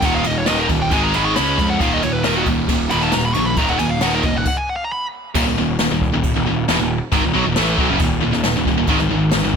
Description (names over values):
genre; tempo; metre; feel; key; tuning
heavy metal; 136 BPM; 4/4; straight; Eb minor; A4 = 441 Hz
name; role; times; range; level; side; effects
high-gain lead guitar; melody; 0.0-5.0 s; Gb4 to Db6; -22 LUFS; equal; distortion, tape echo
heavy high-gain guitar; riff; 0.0-9.6 s; Eb2 to Db4; -22 LUFS; left 12 dB; distortion
high-gain distorted guitar; riff; 0.0-9.6 s; Eb2 to Db4; -22 LUFS; right 11 dB; distortion
sludgy distorted guitar; riff; 0.0-9.6 s; Eb2 to Db4; -23 LUFS; right 1 dB; overdrive
fuzz picked electric bass; bass; 0.0-9.6 s; Eb1 to F2; -23 LUFS; equal; overdrive
jazz brush drum kit; drums; 0.0-9.6 s; crash cymbal, kick drum, ride cymbal, snare drum; -22 LUFS; equal; none
room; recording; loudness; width
small room ambience; none; -15 LUFS; side -6 dB against mid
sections
0.0-5.4 A section; 5.4-9.6 B section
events
lead electric guitar solo 0.0-5.4; stop 4.5-5.4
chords
0.0 Eb5; 0.9 Ab5; 1.4 Db5; 1.8 Eb5; 4.9 N.C.; 5.4 Ebm; 8.9 Ab5